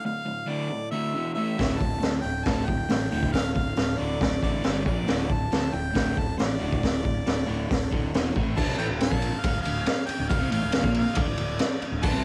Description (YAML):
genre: garage rock duo or trio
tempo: 138 BPM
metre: 4/4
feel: straight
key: D minor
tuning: A4 = 441 Hz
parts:
  - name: clear harmonica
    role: melody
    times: 0.0-12.2 s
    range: D5 to A5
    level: -35 LUFS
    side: equal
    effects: overdrive
  - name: crunchy overdriven guitar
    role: riff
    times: 0.0-12.2 s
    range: D2 to C4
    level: -32 LUFS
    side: equal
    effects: cassette tape
  - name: fuzz picked electric bass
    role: bass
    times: 1.6-12.2 s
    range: D1 to D2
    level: -34 LUFS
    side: equal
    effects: overdrive
  - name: raw garage drum kit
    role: drums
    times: 1.6-12.1 s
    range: crash cymbal, hi-hat, kick drum, ride cymbal, snare drum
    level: -28 LUFS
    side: equal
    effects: cassette tape
room: light reverb, studio reverb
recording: home recording on cassette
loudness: -26 LUFS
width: mono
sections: 0.0-8.6 A section; 8.6-12.2 B section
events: none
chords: 0.0 Dm; 1.1 E5; 1.4 A5; 1.6 Dm; 4.6 G5; 4.9 Bb5; 5.1 D5; 8.1 E5; 8.3 A5; 8.6 Dm